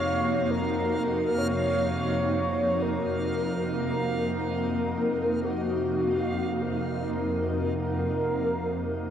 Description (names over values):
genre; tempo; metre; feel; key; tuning
dark ambient drone; 51 BPM; 4/4; straight; unclear; A4 = 442 Hz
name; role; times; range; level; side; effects
mellow horn-like synth lead; melody; 0.0-9.1 s; Gb4 to Db5; -29 LUFS; equal; chorus, vintage 12-bit sampler grit, analog delay
granular cloud pad; sustained chords; 0.0-9.1 s; F2 to Gb4; -30 LUFS; equal; built-in reverb
bowed-like drone; drone; 0.0-9.1 s; F2 to C3; -32 LUFS; equal; built-in reverb
backwards swelling texture; texture; 0.0-9.0 s; F5; -37 LUFS; right 2 dB; built-in reverb
room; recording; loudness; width
wet spring reverb, RT60 2.3 s; echo-heavy mix; -25 LUFS; side -9 dB against mid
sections
0.0-9.0 A section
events
none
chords
0.0 Gb/F